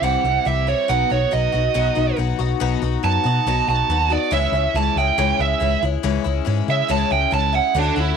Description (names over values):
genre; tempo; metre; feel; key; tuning
folk rock and heartland rock; 140 BPM; 4/4; straight; unclear; A4 = 440 Hz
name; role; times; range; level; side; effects
bluesy overdriven lead guitar; melody; 0.0-8.2 s; D4 to A5; -20 LUFS; right 10 dB; distortion
picked twelve-string acoustic guitar; accompaniment; 0.0-8.2 s; B2 to F#4; -23 LUFS; left 13 dB; none
hollow-body short-scale picked electric bass; bass; 0.0-8.1 s; B1 to C#3; -22 LUFS; equal; none
room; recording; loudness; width
light reverb, small room ambience; 1960s-style stereo with parts hard left and right; -17 LUFS; side -6 dB against mid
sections
0.0-7.8 A section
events
lead electric guitar solo 0.0-7.8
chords
0.0 C; 0.9 B; 4.3 C#m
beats
0.03 0.46 | 0.89 1.32 1.75 2.18 | 2.61 3.04 3.47 3.90 | 4.33 4.75 5.18 5.61 | 6.04 6.47 6.90 7.33 | 7.75